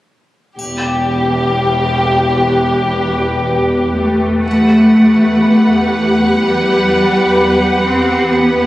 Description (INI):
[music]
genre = cinematic, suspense film score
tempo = 62 BPM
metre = 4/4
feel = straight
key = E minor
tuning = A4 = 440 Hz
[part]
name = warm studio violin section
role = melody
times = 0.6-8.7 s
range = G4 to F#5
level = -17 LUFS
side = left 1 dB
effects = none
[part]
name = rich studio cello section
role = bass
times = 0.6-8.7 s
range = E2 to C4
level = -14 LUFS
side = equal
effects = none
[part]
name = warm studio double bass section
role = bass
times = 0.6-8.7 s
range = E1 to E2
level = -22 LUFS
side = right 1 dB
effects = none
[part]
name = swarming drone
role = drone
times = 1.8-8.7 s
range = E2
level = -25 LUFS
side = equal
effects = built-in reverb
[part]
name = triangle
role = percussion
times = 0.6-2.5 s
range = none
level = -31 LUFS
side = equal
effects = none
[part]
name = felt-muted upright piano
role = texture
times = 2.0-8.7 s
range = B4 to B5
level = -23 LUFS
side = left 1 dB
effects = none
[part]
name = warm studio viola section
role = accompaniment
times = 4.5-8.7 s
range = G4 to B4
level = -16 LUFS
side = equal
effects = none
[part]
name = marimba with soft mallets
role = riff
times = 4.5-8.6 s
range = E2 to E3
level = -30 LUFS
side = left 2 dB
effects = none
[sound]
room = moderate scoring stage reverb, RT60 1.6 s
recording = recorded on a phone in the room, studio reverb, compression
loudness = -10 LUFS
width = side -16 dB against mid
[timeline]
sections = 0.6-4.5 A section; 4.5-8.7 B section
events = none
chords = 0.6 Em; 4.5 Emadd9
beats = | 0.58 1.55 2.52 3.49 | 4.46 5.42 6.39 7.36 | 8.33